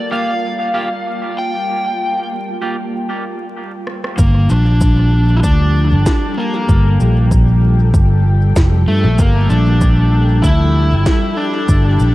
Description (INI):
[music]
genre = ambient dub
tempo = 96 BPM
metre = 4/4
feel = swing 54% on 16ths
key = G minor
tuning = A4 = 440 Hz
[part]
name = overdriven slide guitar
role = melody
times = 0.0-12.1 s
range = A3 to G5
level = -20 LUFS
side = equal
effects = dub echo
[part]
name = soft additive organ-like pad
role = sustained chords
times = 0.0-12.1 s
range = F3 to A5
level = -23 LUFS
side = equal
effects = ensemble chorus, built-in reverb
[part]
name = bubbling stepped-filter texture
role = texture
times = 0.0-2.9 s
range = Bb3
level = -31 LUFS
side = right 2 dB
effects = chorus, built-in reverb
[part]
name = clean electric guitar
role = stabs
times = 0.1-2.8 s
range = Bb3 to G4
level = -27 LUFS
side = right 1 dB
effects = dub echo
[part]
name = electronic rim click, cabasa and snare drum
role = drums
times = 3.9-12.1 s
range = none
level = -26 LUFS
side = equal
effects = overdrive, dub echo
[part]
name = fingered electric bass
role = bass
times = 4.2-12.1 s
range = F1 to G2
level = -11 LUFS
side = equal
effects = none
[part]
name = electronic kick drum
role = drums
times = 4.2-11.8 s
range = none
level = -15 LUFS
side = equal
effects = overdrive
[sound]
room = digital ambience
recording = dark, warm production, vinyl crackle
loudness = -11 LUFS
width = side -17 dB against mid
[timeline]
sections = 0.0-4.2 A section; 4.2-12.1 B section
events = break 2.9-4.2; drum fill 3.9-4.2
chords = 0.0 Gm7